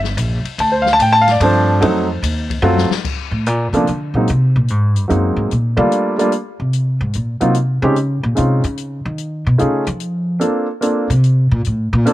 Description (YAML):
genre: jazz piano trio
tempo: 146 BPM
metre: 3/4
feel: swing 68% on 8ths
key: Bb major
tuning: A4 = 440 Hz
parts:
  - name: upright bass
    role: bass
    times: 0.0-12.1 s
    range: G1 to F3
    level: -16 LUFS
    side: equal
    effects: none
  - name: open jazz drum kit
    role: drums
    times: 0.0-12.1 s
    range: crash cymbal, hi-hat, kick drum, ride cymbal, snare drum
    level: -26 LUFS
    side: left 6 dB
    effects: none
  - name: warm grand piano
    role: melody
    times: 0.6-12.1 s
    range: F3 to A5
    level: -15 LUFS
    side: equal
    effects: none
room: studio reverb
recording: 1960s-style stereo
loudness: -14 LUFS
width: side -15 dB against mid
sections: 0.0-3.0 A section; 3.0-12.1 A section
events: grand piano solo 0.0-3.0; drum fill 2.6-3.0; upright bass solo 3.0-12.1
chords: 0.0 A7(no3) (rootless); 0.6 Dm7; 1.8 F7b9; 3.0 Bbmaj7; 4.3 Ab9; 5.5 Gm9; 6.7 Abadd9 (rootless); 8.0 Dbmaj7; 9.2 F7alt; 10.4 Bbmaj9